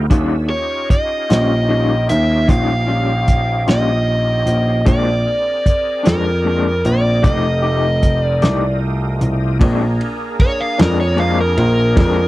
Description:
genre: slow blues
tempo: 51 BPM (dotted quarters)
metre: 12/8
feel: straight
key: Bb mixolydian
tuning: A4 = 440 Hz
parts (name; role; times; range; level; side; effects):
- overdriven tonewheel organ; sustained chords; 0.0-12.3 s; A3 to E5; -27 LUFS; equal; slow rotary speaker, chorus vibrato
- dark grand piano; bass; 0.0-12.3 s; F1 to F2; -16 LUFS; equal; none
- electric guitar through a small old amp; accompaniment; 0.1-12.2 s; Bb2 to G4; -20 LUFS; left 4 dB; tremolo
- warm soul drum kit; drums; 0.1-12.1 s; hi-hat, kick drum, ride cymbal, snare drum; -14 LUFS; equal; none
- overdriven electric guitar; melody; 0.5-12.3 s; Bb4 to F5; -19 LUFS; equal; none
- warm horn section; sustained chords; 9.6-12.3 s; Bb3 to Ab4; -30 LUFS; left 1 dB; none
room: little or no reverb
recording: dry, close 1970s-style studio recording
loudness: -13 LUFS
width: side -17 dB against mid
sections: 0.0-9.6 A section; 9.6-12.3 B section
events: overdriven electric guitar solo 9.6-12.3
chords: 0.1 Eb9; 4.9 Bb9; 7.2 F9; 9.6 Bb9

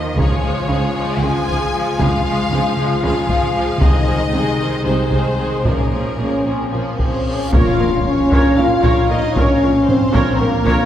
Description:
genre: cinematic, epic orchestral film score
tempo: 230 BPM (eighths)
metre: 7/8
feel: straight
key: Bb minor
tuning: A4 = 440 Hz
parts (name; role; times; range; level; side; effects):
- bright symphonic violin section; melody; 0.0-10.9 s; Bb4 to Ab5; -26 LUFS; left 2 dB; none
- warm symphonic violin section; second line; 0.0-10.9 s; C4 to F5; -24 LUFS; left 2 dB; none
- rich symphonic viola section; accompaniment; 0.0-10.9 s; Eb3 to Db5; -24 LUFS; right 2 dB; none
- rich symphonic cello section; bass; 0.0-10.7 s; Bb2 to Eb3; -25 LUFS; right 2 dB; none
- warm symphonic double bass section; bass; 0.0-10.7 s; Bb1 to Eb2; -24 LUFS; right 1 dB; none
- clear French horn section; sustained chords; 0.2-10.9 s; Ab3 to F4; -19 LUFS; left 1 dB; none
- taiko ensemble; drums; 0.2-10.9 s; none; -20 LUFS; equal; none
- reverse cymbal and impact; sound effects; 7.1-9.4 s; none; -30 LUFS; equal; none
- warm tuba; bass; 7.5-10.7 s; Bb1; -24 LUFS; right 1 dB; none
- timpani; percussion; 7.5-8.3 s; Bb2; -28 LUFS; equal; none
room: wet concert hall reverb, RT60 2.1 s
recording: heard from further back in the room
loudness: -14 LUFS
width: side -11 dB against mid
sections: 0.0-7.5 A section; 7.5-10.9 B section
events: reverse cymbal 7.1-7.5; impact 7.5-9.4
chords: 0.2 Db; 3.8 Ab/C; 5.6 Bbm7; 7.5 Bbm

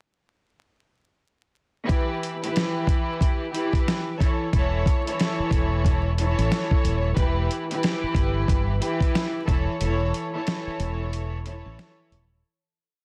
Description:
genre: hip hop, boom-bap hip-hop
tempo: 91 BPM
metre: 4/4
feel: swing 61% on 16ths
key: unclear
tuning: A4 = 440 Hz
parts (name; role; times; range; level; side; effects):
- warm studio string section; accompaniment; 1.9-12.4 s; E3 to C#5; -29 LUFS; equal; cassette tape, high-pass filter, low-pass filter
- dusty soul sampler-style drum kit; drums; 1.9-12.3 s; hi-hat, kick drum, snare drum; -26 LUFS; equal; vintage 12-bit sampler grit
- mellow fretless electric bass; bass; 4.5-12.4 s; D#1 to A1; -28 LUFS; equal; subtle chorus
room: little or no reverb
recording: dense, heavily limited modern master, vinyl crackle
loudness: -24 LUFS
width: mono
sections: 1.9-12.4 verse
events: break 9.8-12.4; fade-out 9.8-12.4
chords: 1.9 Em; 4.2 A/E; 7.2 Em; 9.5 A/E

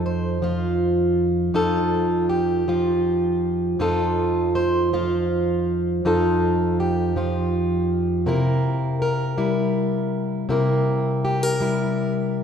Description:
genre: blues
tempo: 54 BPM (dotted quarters)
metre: 12/8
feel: straight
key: F mixolydian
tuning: A4 = 441 Hz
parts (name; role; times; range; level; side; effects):
- fingerpicked plugged-in steel-string acoustic guitar; solo; 0.0-12.4 s; F2 to C5; -19 LUFS; equal; none
room: wet concert hall reverb, RT60 2.1 s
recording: recorded in a church or concert hall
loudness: -19 LUFS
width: side -7 dB against mid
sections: 0.0-12.4 A section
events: none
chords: 0.0 F7; 8.3 C7

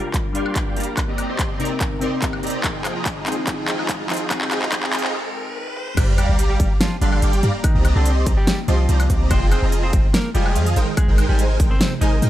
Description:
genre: future bass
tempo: 144 BPM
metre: 4/4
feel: half-time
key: C minor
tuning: A4 = 441 Hz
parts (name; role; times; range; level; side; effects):
- glassy digital keys; accompaniment; 0.0-6.0 s; C3 to Bb4; -28 LUFS; left 2 dB; chorus, sidechain pumping, tape echo
- ethereal airy pad; sustained chords; 0.0-12.3 s; C3 to G5; -34 LUFS; right 1 dB; none
- supersaw chords; riff; 0.0-12.3 s; F3 to C6; -25 LUFS; right 1 dB; ensemble chorus, vintage 12-bit sampler grit, sidechain pumping, low-pass filter
- riser and sub drop; sound effects; 1.2-7.6 s; none; -31 LUFS; equal; none
- big-room dance drum kit; drums; 0.1-12.3 s; crash cymbal, handclaps, hi-hat, snare drum, toms, woodblock; -24 LUFS; equal; high-pass filter on snare, studio reverb, high-pass filter on hats, high-pass filter on perc, high-pass filter on toms, high-pass filter on cymbals
- electronic kick drum; drums; 0.1-11.7 s; none; -20 LUFS; equal; studio reverb
- warm 808-style bass; bass; 0.3-12.3 s; F1 to Ab2; -18 LUFS; equal; sidechain pumping, high-pass filter
- semi-hollow electric guitar; melody; 6.0-12.3 s; D3 to Eb5; -28 LUFS; equal; sidechain pumping, tape echo
room: light reverb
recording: high-pass filter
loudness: -17 LUFS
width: side -13 dB against mid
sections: 0.0-6.0 A section; 6.0-12.3 B section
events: build-up 0.0-6.0; drum fill 0.0-5.1, 5.6-6.0; filter sweep 0.0-6.0; break 5.1-6.0; drop 6.0-12.3; impact 6.0-7.6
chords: 0.0 Gm7; 1.0 Cm7; 2.6 Fm7; 4.1 Abmaj7; 6.0 Gm7; 7.6 Cm7; 9.3 Fm7; 10.8 Abmaj7

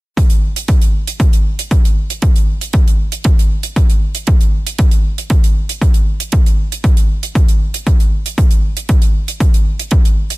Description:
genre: nu-disco, nu disco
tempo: 117 BPM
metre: 4/4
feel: straight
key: none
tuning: none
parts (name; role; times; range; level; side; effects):
- electronic kick drum; drums; 0.2-10.0 s; none; -11 LUFS; equal; overdrive
- hi-hat; drums; 0.2-10.4 s; none; -24 LUFS; right 6 dB; none
room: little or no reverb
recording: dense, heavily limited modern master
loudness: -11 LUFS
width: side -21 dB against mid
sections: 0.2-10.4 A section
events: none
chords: none

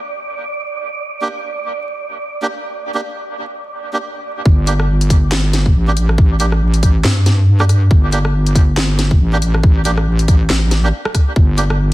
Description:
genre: deep dubstep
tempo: 139 BPM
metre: 4/4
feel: swing 58% on 16ths, half-time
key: unclear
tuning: A4 = 441 Hz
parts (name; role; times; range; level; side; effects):
- wind-like tuned noise texture; texture; 0.0-4.5 s; D5; -26 LUFS; right 4 dB; built-in reverb
- melodica; stabs; 1.2-11.6 s; Bb3 to G4; -24 LUFS; right 2 dB; dub echo
- wobble bass; bass; 4.5-11.9 s; G1 to G2; -14 LUFS; equal; chorus
- electronic kick drum; drums; 4.5-11.5 s; none; -11 LUFS; equal; small room ambience
- garage drum kit; drums; 4.7-11.8 s; handclaps, hi-hat, rim click, snare drum; -20 LUFS; equal; small room ambience, soft clipping on snare
room: little or no reverb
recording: dense, heavily limited modern master, vinyl crackle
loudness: -12 LUFS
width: side -17 dB against mid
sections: 0.0-4.5 A section; 4.5-11.9 B section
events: drop 4.5-11.9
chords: none

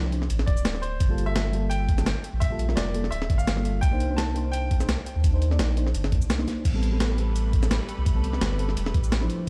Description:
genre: liquid drum and bass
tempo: 170 BPM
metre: 4/4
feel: swing 54% on 16ths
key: A phrygian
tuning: A4 = 440 Hz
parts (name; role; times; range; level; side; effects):
- mellow FM electric piano; accompaniment; 0.0-9.5 s; F3 to D5; -34 LUFS; equal; chorus, phaser, dub echo
- saturated sub bass; bass; 0.0-9.3 s; D1 to F2; -28 LUFS; equal; none
- breakbeat sampler-style drum kit; drums; 0.1-9.4 s; crash cymbal, hi-hat, shaker, snare drum; -32 LUFS; equal; none
- bright baby grand piano; melody; 0.5-4.9 s; C5 to A5; -37 LUFS; equal; dub echo
- electronic kick drum; drums; 0.5-9.0 s; none; -26 LUFS; equal; none
- lush unison pad; sustained chords; 6.6-9.5 s; F3 to C5; -39 LUFS; equal; chorus
room: digital ambience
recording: played on a big sound system in a bare room, stone room reverb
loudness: -25 LUFS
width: mono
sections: 0.0-9.5 A section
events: kick drops out 6.3-6.7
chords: 0.0 Dm9; 1.0 Gm9; 3.8 Cm9; 6.7 Am9

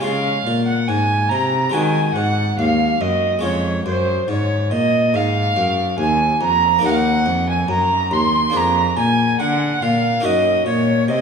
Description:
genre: classical, baroque-style sonata movement with continuo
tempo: 70 BPM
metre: 4/4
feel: straight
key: Db major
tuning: A4 = 440 Hz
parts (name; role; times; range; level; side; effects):
- alto recorder; melody; 0.0-11.2 s; C5 to C6; -24 LUFS; left 7 dB; none
- dark violin; second line; 0.0-11.2 s; C5 to C6; -19 LUFS; right 5 dB; none
- harpsichord; accompaniment; 0.0-11.2 s; Eb2 to Bb4; -22 LUFS; left 3 dB; none
- rich cello; bass; 0.0-11.2 s; Eb2 to Eb3; -21 LUFS; equal; none
room: wet recital hall reverb, RT60 1.5 s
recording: none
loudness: -15 LUFS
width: side -6 dB against mid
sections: 0.0-11.2 A section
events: none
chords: 0.0 Db; 1.7 Ab7; 3.4 Db/F; 6.8 Ebm; 8.6 Bb7/F; 10.3 Ebm/Gb

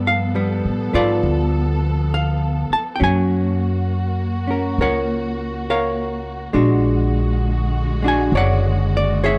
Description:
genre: jazz ballad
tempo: 68 BPM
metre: 4/4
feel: swing 67% on 8ths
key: unclear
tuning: A4 = 440 Hz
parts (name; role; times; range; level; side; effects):
- archtop guitar, miked and amplified; accompaniment; 0.0-9.4 s; Gb3 to A5; -23 LUFS; equal; none
- muted studio string section; sustained chords; 0.0-9.4 s; D3 to A4; -29 LUFS; equal; none
- upright bass; bass; 0.0-9.4 s; F#1 to A2; -22 LUFS; equal; none
room: light reverb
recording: dark, warm production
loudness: -19 LUFS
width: mono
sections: 0.0-9.4 A section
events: none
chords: 0.0 G9; 3.0 Gbmaj7; 6.5 Bb7alt

